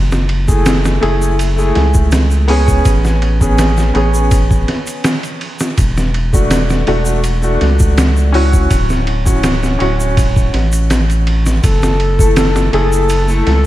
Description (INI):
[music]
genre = trip hop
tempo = 82 BPM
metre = 4/4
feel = straight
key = F# minor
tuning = A4 = 440 Hz
[part]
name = round analog bass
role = bass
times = 0.0-13.7 s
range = D1 to C#2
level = -14 LUFS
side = equal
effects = tube saturation
[part]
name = trip hop sampler-style drum kit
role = drums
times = 0.1-13.7 s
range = hi-hat, kick drum, ride cymbal, snare drum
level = -16 LUFS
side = equal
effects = none
[part]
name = tube shaker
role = percussion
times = 0.1-13.4 s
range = none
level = -30 LUFS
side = right 1 dB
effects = none
[part]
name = clear upright piano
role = accompaniment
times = 0.5-13.7 s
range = A3 to A4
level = -17 LUFS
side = equal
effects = tremolo, tape echo
[part]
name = trumpet with bucket mute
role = melody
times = 11.6-13.7 s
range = A4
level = -18 LUFS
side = left 1 dB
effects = tape echo
[sound]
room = light reverb, small room ambience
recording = vinyl crackle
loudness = -11 LUFS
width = side -15 dB against mid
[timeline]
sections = 0.0-13.7 A section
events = none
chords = 0.0 F#m7; 2.9 Amaj7; 5.8 E7sus4; 8.7 Dmaj7; 11.6 F#m7